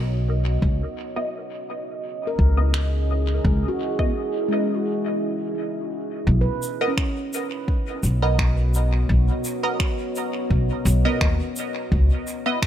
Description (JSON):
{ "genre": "ambient dub", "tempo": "85 BPM", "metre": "4/4", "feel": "swing 54% on 16ths", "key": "unclear", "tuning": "A4 = 439 Hz", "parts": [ { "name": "deep dark ambient pad", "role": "sustained chords", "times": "0.0-12.7 s", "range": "B3 to D#5", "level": "-29 LUFS", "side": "right 1 dB", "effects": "chorus, built-in reverb" }, { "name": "filtered dub chord stab", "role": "stabs", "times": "0.0-12.6 s", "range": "B3 to D#5", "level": "-29 LUFS", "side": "right 1 dB", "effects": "phaser, analog chorus, dub echo" }, { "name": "upright bass", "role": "bass", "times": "0.0-12.1 s", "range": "B1 to D#2", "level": "-20 LUFS", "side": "equal", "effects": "none" }, { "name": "electronic kick drum", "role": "drums", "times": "0.6-12.7 s", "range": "none", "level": "-23 LUFS", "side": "equal", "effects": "none" }, { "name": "handpan", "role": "arpeggios", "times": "2.3-9.0 s", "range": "G#3 to B4", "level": "-30 LUFS", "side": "left 2 dB", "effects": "dub echo" }, { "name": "finger snaps and shaker", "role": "drums", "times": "2.7-12.7 s", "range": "none", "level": "-32 LUFS", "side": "right 1 dB", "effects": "dub echo" } ], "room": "light reverb, small room ambience", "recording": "none", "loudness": "-20 LUFS", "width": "side -10 dB against mid", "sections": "0.0-6.3 A section; 6.3-12.7 B section", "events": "break 4.9-6.3", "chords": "0.0 Bmaj7; 0.6 C#m9; 6.3 Bmaj7; 11.9 C#m9", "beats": "| 0.62 1.33 2.04 2.74 | 3.45 4.15 4.86 5.56 | 6.27 6.98 7.68 8.39 | 9.09 9.80 10.51 11.21 | 11.92 12.62" }